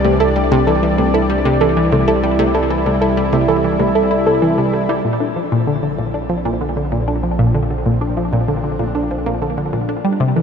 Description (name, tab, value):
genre	ambient, sequencer-driven space music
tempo	96 BPM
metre	4/4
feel	straight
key	unclear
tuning	A4 = 441 Hz
part	sweeping resonant pad	sustained chords	0.0-10.4 s	Bb2 to D5	-19 LUFS	left 1 dB	chorus, shimmer reverb
part	soft round pluck	arpeggios	0.0-10.4 s	E3 to A4	-21 LUFS	right 2 dB	chorus, auto-pan, tape echo, shimmer reverb
part	analog pluck	riff	0.0-10.4 s	Bb2 to E4	-18 LUFS	equal	chorus, phaser, tape echo, shimmer reverb
part	round analog bass	bass	0.0-10.4 s	Bb1 to C2	-24 LUFS	equal	none
room	wet huge ambient reverb, RT60 8.3 s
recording	dark, warm production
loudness	-14 LUFS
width	side -7 dB against mid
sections	0.0-5.0 A section; 5.0-10.4 B section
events	fade-in on synth arpeggio sound 5.0-10.4; fade-in on analog synth pad 5.0-10.4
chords	0.0 Csus2; 5.0 Bb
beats	| 0.05 0.67 1.30 1.92 | 2.55 3.17 3.80 4.42 | 5.05 5.67 6.30 6.92 | 7.55 8.17 8.80 9.42 | 10.05